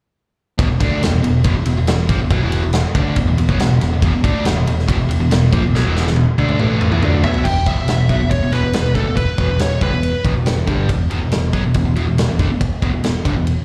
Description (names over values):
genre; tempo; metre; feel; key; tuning
hard rock; 140 BPM; 4/4; straight; E minor; A4 = 440 Hz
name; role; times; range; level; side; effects
overdriven electric guitar; riff; 0.6-13.5 s; E2 to D4; -21 LUFS; equal; none
modern bright picked electric bass; bass; 0.6-13.6 s; E1 to E2; -22 LUFS; equal; none
big rock drum kit; drums; 0.6-13.6 s; crash cymbal, kick drum, ride cymbal, snare drum, toms; -21 LUFS; equal; none
high-gain lead guitar; melody; 7.2-10.2 s; A4 to G5; -25 LUFS; equal; distortion, plate reverb, slapback echo, analog delay
room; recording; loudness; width
moderate club reverb, RT60 0.8 s; live gig heard through the venue's PA, club reverb; -17 LUFS; mono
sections
0.6-7.5 A section; 7.5-13.6 B section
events
drum fill 5.7-7.5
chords
0.6 E5; 7.5 Em